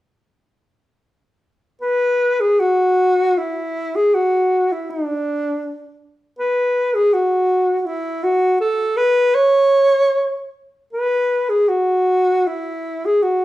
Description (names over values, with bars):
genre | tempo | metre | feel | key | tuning
celtic folk | 79 BPM | 3/4 | rubato | unclear | A4 = 438 Hz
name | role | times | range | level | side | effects
warm alto saxophone | solo | 1.8-13.4 s | D4 to C#5 | -15 LUFS | equal | none
room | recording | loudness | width
moderate large studio reverb, RT60 0.9 s | band playing live in one room | -15 LUFS | side -16 dB against mid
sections
1.8-13.4 A section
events
none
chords
none